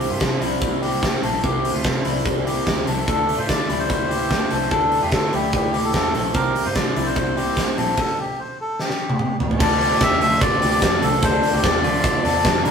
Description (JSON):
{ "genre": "jangly indie pop", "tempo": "147 BPM", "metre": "4/4", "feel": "straight", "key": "D minor", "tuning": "A4 = 441 Hz", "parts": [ { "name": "overdriven electric guitar", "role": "accompaniment", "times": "0.0-12.7 s", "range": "C3 to E4", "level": "-26 LUFS", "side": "right 5 dB", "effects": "none" }, { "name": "electric guitar through a small old amp", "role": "arpeggios", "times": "0.0-12.7 s", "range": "G3 to Bb4", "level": "-23 LUFS", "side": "left 4 dB", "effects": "warbly pitch drift" }, { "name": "vintage muted picked electric bass", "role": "bass", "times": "0.0-12.7 s", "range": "A1 to D3", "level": "-28 LUFS", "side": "equal", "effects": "none" }, { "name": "big rock drum kit", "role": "drums", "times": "0.0-12.7 s", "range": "crash cymbal, hi-hat, kick drum, ride cymbal, snare drum, toms", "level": "-22 LUFS", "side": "equal", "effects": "none" }, { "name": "melodica", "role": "melody", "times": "3.1-12.6 s", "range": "G4 to E5", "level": "-23 LUFS", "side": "equal", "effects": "none" } ], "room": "moderate stone room reverb, RT60 1.3 s", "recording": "rough rehearsal-room recording", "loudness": "-18 LUFS", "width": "side -6 dB against mid", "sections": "0.0-9.6 A section; 9.6-12.7 B section", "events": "stop 8.0-9.6; drum fill 8.8-9.6", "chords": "0.0 Dsus2; 6.3 C; 9.6 Bbmaj7", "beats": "0.21 0.62 1.03 | 1.44 1.85 2.26 2.67 | 3.08 3.48 3.89 4.30 | 4.71 5.12 5.53 5.94 | 6.34 6.75 7.16 7.57 | 7.98 8.38 8.79 9.20 | 9.61 10.01 10.42 10.82 | 11.23 11.64 12.04 12.45" }